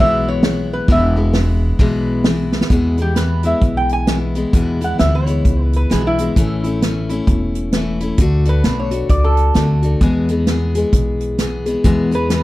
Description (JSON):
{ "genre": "honky-tonk and classic country", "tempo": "131 BPM", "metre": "4/4", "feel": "swing 60% on 8ths", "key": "E mixolydian", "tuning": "A4 = 440 Hz", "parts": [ { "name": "lap resonator guitar", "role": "melody", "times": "0.0-12.4 s", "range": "E4 to G#5", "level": "-20 LUFS", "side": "right 1 dB", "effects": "none" }, { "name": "picked steel-string acoustic guitar", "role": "accompaniment", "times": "0.0-12.4 s", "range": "E2 to G#4", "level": "-20 LUFS", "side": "left 2 dB", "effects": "none" }, { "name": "upright bass", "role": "bass", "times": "0.0-12.4 s", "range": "E1 to E2", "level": "-18 LUFS", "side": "equal", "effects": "none" }, { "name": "unplugged drum kit", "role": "drums", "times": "0.4-12.4 s", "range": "hi-hat, kick drum, snare drum", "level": "-17 LUFS", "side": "equal", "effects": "none" } ], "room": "little or no reverb", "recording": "none", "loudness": "-14 LUFS", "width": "side -17 dB against mid", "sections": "0.0-2.7 A section; 2.7-12.4 B section", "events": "drum fill 2.5; resonator guitar played with a steel bar solo 2.7-12.4", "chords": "0.0 E; 6.4 A; 8.2 D; 10.0 E" }